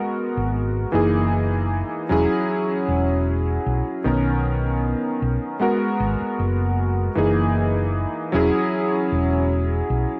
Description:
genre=vaporwave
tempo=77 BPM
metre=4/4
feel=swing 55% on 16ths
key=unclear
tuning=A4 = 440 Hz
part: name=warm electric grand piano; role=accompaniment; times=0.0-10.2 s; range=D#3 to A#4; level=-24 LUFS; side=equal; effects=subtle chorus, tape echo
part: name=hollow-body short-scale fingered electric bass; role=bass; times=0.4-10.0 s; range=E1 to B1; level=-25 LUFS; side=equal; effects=none
room=moderate recital hall reverb, RT60 1.4 s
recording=cassette tape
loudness=-22 LUFS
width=mono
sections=0.0-10.2 A section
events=none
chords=0.0 G#m9; 0.9 F#13; 2.1 E69; 4.1 Bmaj9; 5.6 G#m9; 7.2 F#13; 8.3 E69

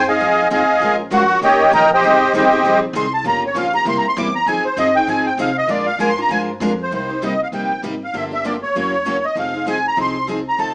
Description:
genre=acoustic string swing (jazz manouche)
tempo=197 BPM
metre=4/4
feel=swing 58% on 8ths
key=C minor from 6.9 s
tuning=A4 = 445 Hz
part: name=musette accordion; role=melody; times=0.0-10.7 s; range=Gb4 to D6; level=-15 LUFS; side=equal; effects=none
part: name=upright bass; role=bass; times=0.0-10.7 s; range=F1 to C3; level=-32 LUFS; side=equal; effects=none
part: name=picked steel-string acoustic guitar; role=accompaniment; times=0.1-10.7 s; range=C3 to Bb4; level=-22 LUFS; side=equal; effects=none
part: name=picked steel-string acoustic guitar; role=accompaniment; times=0.2-10.7 s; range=C3 to Bb4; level=-27 LUFS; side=equal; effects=none
room=moderate studio reverb, RT60 0.8 s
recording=small speaker sound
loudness=-14 LUFS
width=side -30 dB against mid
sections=0.0-6.9 A section; 6.9-10.7 B section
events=accordion solo 0.0-6.9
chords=0.0 Fm9; 0.8 Bbm7; 1.4 Eb7; 2.0 Abmaj9; 3.2 Gm7b5; 3.9 C7; 4.5 Fm9; 5.7 Bb7; 6.9 Cm7; 8.1 Gm7; 8.7 F#7; 9.4 Fm7

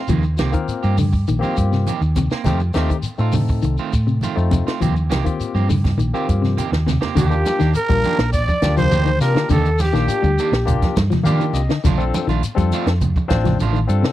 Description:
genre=afrobeat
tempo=102 BPM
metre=4/4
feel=straight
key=unclear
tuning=A4 = 440 Hz
part: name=electric guitar at the edge of break-up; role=stabs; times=0.0-14.1 s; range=Eb3 to G4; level=-27 LUFS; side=right 9 dB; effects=spring reverb
part: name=semi-hollow electric guitar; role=arpeggios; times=0.1-14.1 s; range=C3 to G3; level=-23 LUFS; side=left 5 dB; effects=none
part: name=hollow-body short-scale fingered electric bass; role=bass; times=0.1-14.1 s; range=A1 to Eb3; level=-19 LUFS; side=equal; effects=none
part: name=compact cocktail drum kit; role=drums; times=0.1-14.1 s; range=hi-hat, kick drum, snare drum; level=-22 LUFS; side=right 1 dB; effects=none
part: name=congas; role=percussion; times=0.1-13.7 s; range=none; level=-24 LUFS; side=right 3 dB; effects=none
part: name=shekere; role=percussion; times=0.1-14.1 s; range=none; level=-31 LUFS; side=left 4 dB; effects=none
part: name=barky tine electric piano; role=accompaniment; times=0.4-14.1 s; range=A3 to F5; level=-25 LUFS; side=left 7 dB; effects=overdrive
part: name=growling trumpet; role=melody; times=7.2-11.0 s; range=G4 to D5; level=-22 LUFS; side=right 3 dB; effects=none
part: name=bright polished pan flute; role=second line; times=7.2-11.0 s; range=G4 to D5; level=-25 LUFS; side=left 4 dB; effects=none
room=little or no reverb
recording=dry, close 1970s-style studio recording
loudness=-16 LUFS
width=side -14 dB against mid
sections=0.0-7.2 A section; 7.2-14.1 B section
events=drum fill 6.3-7.2; tine electric piano fill 11.0-11.8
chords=0.1 Eb6; 2.5 F7; 4.8 Eb6; 11.8 Bbmaj7

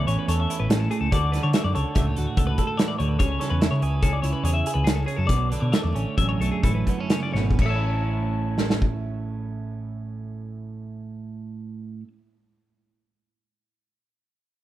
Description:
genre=math rock and midwest emo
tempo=122-145 BPM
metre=5/4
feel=straight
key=A major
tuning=A4 = 440 Hz
part: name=twelve-string electric guitar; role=accompaniment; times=0.0-12.2 s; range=E2 to A4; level=-28 LUFS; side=right 4 dB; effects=spring reverb
part: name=twelve-string electric guitar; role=arpeggios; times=0.0-12.1 s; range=G#4 to A5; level=-30 LUFS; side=left 7 dB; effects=spring reverb
part: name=hollow-body short-scale picked electric bass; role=bass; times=0.0-12.0 s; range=G#1 to D3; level=-25 LUFS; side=equal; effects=none
part: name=loose indie drum kit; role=drums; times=0.1-8.9 s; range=crash cymbal, hi-hat, kick drum, snare drum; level=-25 LUFS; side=equal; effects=none
room=small room ambience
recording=none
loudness=-21 LUFS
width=side -14 dB against mid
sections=0.0-7.6 A section; 7.6-12.5 B section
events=slowing down 4.0-7.6; drum fill 7.3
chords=0.0 Amaj9; 1.1 Amaj9/C#; 5.3 Bm9; 7.6 A

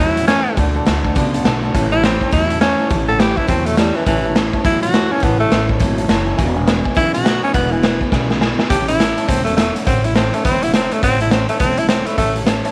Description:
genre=rockabilly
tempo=207 BPM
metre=4/4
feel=swing 61% on 8ths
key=A major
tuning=A4 = 440 Hz
part: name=raspy tenor saxophone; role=melody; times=0.0-12.4 s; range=E3 to A4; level=-20 LUFS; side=equal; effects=none
part: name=dark upright piano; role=accompaniment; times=0.0-12.7 s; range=B4 to B5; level=-28 LUFS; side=equal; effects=none
part: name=picked steel-string acoustic guitar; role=accompaniment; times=0.0-12.7 s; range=E2 to F#4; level=-31 LUFS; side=equal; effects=none
part: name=electric guitar through a small old amp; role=riff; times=0.0-8.7 s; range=E2 to B3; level=-25 LUFS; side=equal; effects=none
part: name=upright bass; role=bass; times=0.0-12.6 s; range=E1 to E2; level=-24 LUFS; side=equal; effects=tube saturation
part: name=raw garage drum kit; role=drums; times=0.2-12.7 s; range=hi-hat, kick drum, snare drum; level=-20 LUFS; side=equal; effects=none
room=light reverb, small room ambience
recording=none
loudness=-16 LUFS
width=mono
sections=0.0-8.7 A section; 8.7-12.7 B section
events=upright piano fill 5.8-6.4; drum fill 8.1-8.7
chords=0.0 A; 0.6 D; 1.7 A; 6.4 E7; 8.7 A

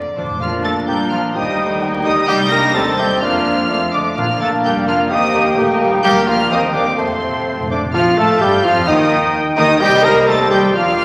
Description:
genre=quick classical-period movement for symphony orchestra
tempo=128 BPM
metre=2/4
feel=straight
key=Bb major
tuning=A4 = 438 Hz
part: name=clear studio violin section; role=melody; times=0.0-11.0 s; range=C5 to Bb6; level=-23 LUFS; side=equal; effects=none
part: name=timpani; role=percussion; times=0.0-1.1, 4.2-4.8, 7.0-8.6 s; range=F2 to Bb2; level=-30 LUFS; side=equal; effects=none
part: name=silver concert flute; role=second line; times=0.2-11.0 s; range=C5 to Bb5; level=-29 LUFS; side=equal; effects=none
part: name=rich studio viola section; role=accompaniment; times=0.2-11.0 s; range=Eb3 to D5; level=-27 LUFS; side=equal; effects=none
part: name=clear trumpet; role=stabs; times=0.2-11.0 s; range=C4 to Bb4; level=-24 LUFS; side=equal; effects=none
part: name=bright studio cello section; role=bass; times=0.2-11.0 s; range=C3 to Bb3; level=-27 LUFS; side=equal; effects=none
part: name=clear studio double bass section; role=bass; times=0.2-11.0 s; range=F1 to Bb2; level=-30 LUFS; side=equal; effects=none
part: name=clear clarinet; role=second line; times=0.4-11.0 s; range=C4 to Eb5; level=-26 LUFS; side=equal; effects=none
part: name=rich studio violin section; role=second line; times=0.4-11.0 s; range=F4 to Bb5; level=-30 LUFS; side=equal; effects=none
part: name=mellow bassoon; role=accompaniment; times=0.4-11.0 s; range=Eb3 to Bb3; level=-24 LUFS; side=equal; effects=none
part: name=mellow French horn section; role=sustained chords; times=0.4-11.0 s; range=G3 to Bb4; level=-23 LUFS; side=equal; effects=none
part: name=mellow cor anglais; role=second line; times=0.9-11.0 s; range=Bb4 to A5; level=-25 LUFS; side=equal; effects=none
room=wet scoring stage reverb, RT60 1.8 s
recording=vinyl crackle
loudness=-15 LUFS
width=mono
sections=0.4-7.9 A section; 7.9-11.0 B section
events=timpani fill 0.0-0.4, 7.0-7.9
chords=0.4 Bb; 1.3 Eb; 2.3 Cm; 2.7 Cm/Eb; 3.2 Bb/F; 3.7 F; 4.2 Bb; 5.1 Eb; 6.0 Bb/D; 6.5 Cm7/Eb; 7.0 F; 7.9 Fadd9; 8.9 Eb; 9.8 Cm; 10.3 Cm/Eb

